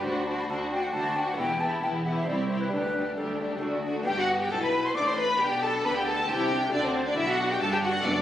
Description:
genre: classical, baroque-style concerto movement with solo episodes.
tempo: 135 BPM.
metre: 3/4.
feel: straight.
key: G major.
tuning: A4 = 440 Hz.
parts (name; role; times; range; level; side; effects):
mellow hollow silver concert flute; melody; 0.0-8.2 s; A4 to D6; -31 LUFS; equal; none.
rich studio violin section; melody; 0.0-8.2 s; F#4 to D6; -32 LUFS; left 2 dB; none.
rich chamber violin section; second line; 0.0-8.2 s; C4 to D5; -30 LUFS; left 2 dB; none.
lute; accompaniment; 0.0-8.2 s; D2 to C5; -36 LUFS; equal; none.
rich chamber viola section; accompaniment; 0.0-8.2 s; G3 to E4; -34 LUFS; left 1 dB; none.
rich chamber cello section; bass; 0.1-8.2 s; C2 to D3; -34 LUFS; right 2 dB; none.
rich studio double bass section; bass; 0.1-8.2 s; E1 to D2; -40 LUFS; right 1 dB; none.
room: moderate concert hall reverb, RT60 1.8 s.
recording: recorded on a phone in the room, studio ambience.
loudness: -24 LUFS.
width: side -11 dB against mid.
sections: 0.0-4.1 A section; 4.1-8.2 B section.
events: none.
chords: 0.1 D7; 1.4 Em; 2.3 C; 2.7 Dsus4; 3.6 D; 4.1 G; 5.4 G/B; 6.7 D.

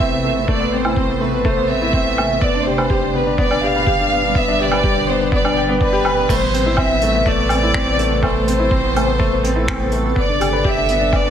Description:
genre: piano and strings electronica.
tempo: 124 BPM.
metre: 4/4.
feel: straight.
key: unclear.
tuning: A4 = 440 Hz.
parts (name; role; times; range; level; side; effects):
warm chamber violin section; melody; 0.0-11.3 s; B4 to F5; -19 LUFS; equal; none.
granular cloud pad; sustained chords; 0.0-11.3 s; B2 to C5; -25 LUFS; right 2 dB; built-in reverb.
warm baby grand piano; riff; 0.0-11.3 s; A3 to G5; -20 LUFS; left 2 dB; ping-pong delay.
round analog bass; bass; 0.0-11.3 s; G1 to A1; -24 LUFS; equal; sidechain pumping.
electronic kick drum; drums; 0.0-11.2 s; none; -20 LUFS; equal; none.
vintage brush drum kit; drums; 0.8-11.2 s; crash cymbal, finger snaps, hi-hat, woodblock; -25 LUFS; equal; high-pass filter on cymbals, high-pass filter on hats, high-pass filter on snare, high-pass filter on perc, high-pass filter on room.
room: moderate echo chamber reverb, RT60 1.8 s, small room ambience.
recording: none.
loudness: -14 LUFS.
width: side -9 dB against mid.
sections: 0.0-6.3 A section; 6.3-11.3 B section.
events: build-up 0.0-6.3; drop 6.3-11.3.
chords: 0.0 Amadd9; 2.4 G; 6.3 Amadd9; 10.2 G.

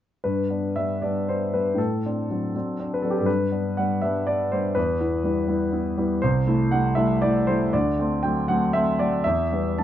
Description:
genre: classical, romantic character piece for solo piano.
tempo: 72-83 BPM (dotted quarters).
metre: 6/8.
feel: rubato.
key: G major.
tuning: A4 = 440 Hz.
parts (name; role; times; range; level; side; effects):
warm grand piano; solo; 0.2-9.8 s; C2 to A5; -21 LUFS; equal; none.
room: light reverb.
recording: dark, warm production, nothing above 7.5 kHz.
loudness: -21 LUFS.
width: side -11 dB against mid.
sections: 0.2-9.8 A section.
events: none.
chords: 0.2 G; 1.8 D7/A; 3.3 G; 4.8 Em; 6.2 Am7/C; 7.7 D7; 9.2 Em.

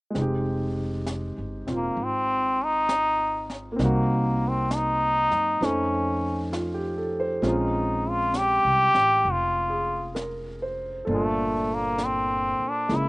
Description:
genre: jazz ballad.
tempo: 66 BPM.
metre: 4/4.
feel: swing 67% on 8ths.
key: F minor.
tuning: A4 = 440 Hz.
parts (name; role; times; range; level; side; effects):
warm concert grand piano; accompaniment; 0.1-13.1 s; Bb2 to C5; -29 LUFS; equal; none.
upright bass; bass; 0.1-13.1 s; E1 to Gb2; -30 LUFS; equal; none.
jazz brush drum kit; drums; 0.1-13.1 s; brushed snare drum, hi-hat, snare drum; -36 LUFS; equal; none.
trombone with metal mute; melody; 1.8-13.1 s; A3 to G4; -23 LUFS; equal; none.
room: little or no reverb.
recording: recorded outdoors, with no room sound, nothing above 10.4 kHz.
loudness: -22 LUFS.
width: side -26 dB against mid.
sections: 0.2-13.1 A section.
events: none.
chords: 0.2 Fm9; 3.8 Cm7b5; 5.6 F7b13; 7.4 Bbm9; 11.1 Gm9.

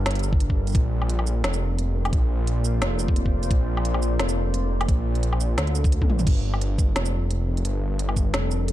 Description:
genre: half-time drum and bass.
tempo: 174 BPM.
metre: 4/4.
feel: swing 55% on 16ths, half-time.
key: G minor.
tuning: A4 = 436 Hz.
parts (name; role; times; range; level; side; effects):
deep dark ambient pad; sustained chords; 0.0-8.7 s; G3 to D5; -32 LUFS; equal; chorus, built-in reverb, sidechain pumping.
dark detuned saw bass; bass; 0.0-8.7 s; F1 to D2; -23 LUFS; equal; none.
organic electronic drum kit; drums; 0.1-8.7 s; crash cymbal, hi-hat, shaker, snare drum, toms, woodblock; -29 LUFS; equal; none.
electronic kick drum; drums; 0.3-8.2 s; none; -21 LUFS; equal; none.
room: digital ambience.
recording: dark, warm production.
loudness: -21 LUFS.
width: side -14 dB against mid.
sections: 0.0-6.3 A section; 6.3-8.7 A section.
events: drop 0.0-6.3, 6.3-8.7; drum fill 6.0.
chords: 0.0 Gm; 0.7 Bbadd9; 6.3 Gm.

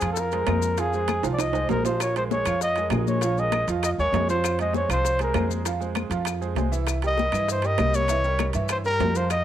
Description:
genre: Afro-Cuban jazz.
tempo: 197 BPM.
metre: 4/4.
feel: straight.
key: F minor.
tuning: A4 = 441 Hz.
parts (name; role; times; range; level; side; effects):
warm trumpet; melody; 0.0-9.4 s; Ab4 to Eb5; -25 LUFS; left 1 dB; cassette tape, analog delay.
clear baby grand piano; accompaniment; 0.0-9.4 s; E3 to F5; -30 LUFS; right 8 dB; cassette tape.
upright bass; bass; 0.0-9.4 s; Bb1 to G2; -27 LUFS; equal; none.
claves; percussion; 0.0-9.4 s; none; -37 LUFS; left 12 dB; none.
congas; percussion; 0.0-9.4 s; none; -32 LUFS; left 12 dB; none.
maracas; percussion; 0.0-9.4 s; none; -37 LUFS; left 15 dB; none.
timbales; percussion; 0.0-9.4 s; none; -32 LUFS; right 10 dB; none.
bongos; percussion; 0.2-9.4 s; none; -38 LUFS; left 12 dB; none.
room: light reverb, studio ambience.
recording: home recording on cassette.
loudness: -22 LUFS.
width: side -11 dB against mid.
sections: 0.0-9.4 A section.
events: drum fill 1.2-2.0.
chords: 0.0 Fm; 2.0 Bbm7; 4.4 Fm; 6.9 C7#9.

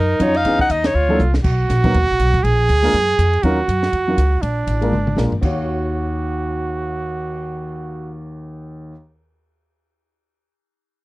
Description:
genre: jazz, small-group swing and bop.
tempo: 241 BPM.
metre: 4/4.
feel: swing 58% on 8ths.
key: Eb minor.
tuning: A4 = 440 Hz.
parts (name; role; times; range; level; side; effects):
breathy alto saxophone; melody; 0.0-1.2 s; Bb4 to Gb5; -18 LUFS; left 2 dB; none.
warm trumpet; second line; 0.0-8.2 s; D4 to Ab4; -21 LUFS; right 3 dB; none.
upright bass; bass; 0.0-8.9 s; Ab1 to Gb2; -20 LUFS; equal; none.
warm concert grand piano; accompaniment; 0.2-8.9 s; Eb2 to F5; -23 LUFS; left 1 dB; none.
compact cocktail drum kit; drums; 0.2-7.4 s; crash cymbal, cymbal swell, hi-hat, kick drum, ride cymbal, snare drum, toms; -23 LUFS; equal; none.
room: little or no reverb.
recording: dry, close 1970s-style studio recording.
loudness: -15 LUFS.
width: side -19 dB against mid.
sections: 0.0-1.4 A section; 1.4-5.4 B section; 5.4-7.4 C section.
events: band accent 0.8; drum fill 1.2, 4.9-5.4.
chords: 0.4 Dbm7; 0.9 Gb7alt; 1.4 Bmaj7; 2.4 Bb7; 3.4 Ebm9; 4.4 Bb7; 5.4 Ebm9.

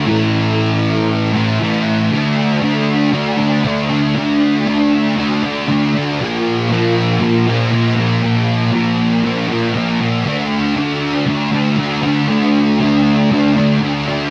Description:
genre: rock.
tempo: 118 BPM.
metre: 4/4.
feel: straight.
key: unclear.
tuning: A4 = 441 Hz.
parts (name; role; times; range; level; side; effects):
thick fuzz guitar; solo; 0.0-14.3 s; A2 to D4; -15 LUFS; equal; distortion, ensemble chorus.
room: light reverb, digital ambience.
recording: none.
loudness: -15 LUFS.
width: mono.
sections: 0.0-2.1 A section; 2.1-14.3 B section.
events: none.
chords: 0.1 A5; 2.1 D5; 6.2 Bb5; 10.3 D5.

